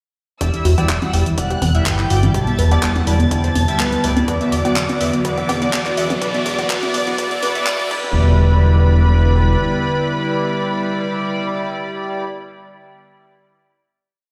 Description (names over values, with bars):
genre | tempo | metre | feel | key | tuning
progressive house | 124 BPM | 4/4 | straight | E minor | A4 = 436 Hz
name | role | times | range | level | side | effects
soft supersaw | melody | 0.4-12.2 s | B4 to A5 | -27 LUFS | equal | low-pass filter, dub echo
warm studio violin section | second line | 0.4-12.2 s | B5 to A6 | -32 LUFS | equal | sidechain pumping, dub echo
airy breathy pad | sustained chords | 0.4-12.2 s | D3 to F#4 | -28 LUFS | equal | chorus, sidechain pumping
unison pluck | arpeggios | 0.4-12.2 s | E3 to E5 | -26 LUFS | equal | sidechain pumping, dub echo
chorused polysynth | stabs | 0.4-12.2 s | E3 to F#5 | -26 LUFS | equal | sidechain pumping, dub echo
fat analog bass | bass | 0.4-9.6 s | D1 to B1 | -19 LUFS | equal | sidechain pumping
deep house drum kit | drums | 0.4-8.0 s | crash cymbal, handclaps, hi-hat | -27 LUFS | equal | overdrive
electronic kick drum | drums | 0.4-8.0 s | none | -32 LUFS | equal | none
riser and impact | sound effects | 3.4-12.3 s | none | -32 LUFS | equal | none
cowbell and congas | percussion | 0.8-8.1 s | none | -28 LUFS | equal | sidechain pumping on perc
room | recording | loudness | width
moderate lush hall reverb, RT60 2.1 s | played on a big sound system in a bare room, large studio reverb, high-pass filter | -17 LUFS | mono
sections
0.4-8.2 build; 8.2-12.0 final hit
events
build-up 0.4-8.2; filter sweep on synth pluck 0.4-8.2; filter sweep on supersaw synth 0.4-8.2; filter sweep 0.4-8.2; riser 3.4-8.2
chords
0.4 Em7; 4.3 Bm/E; 7.9 Em7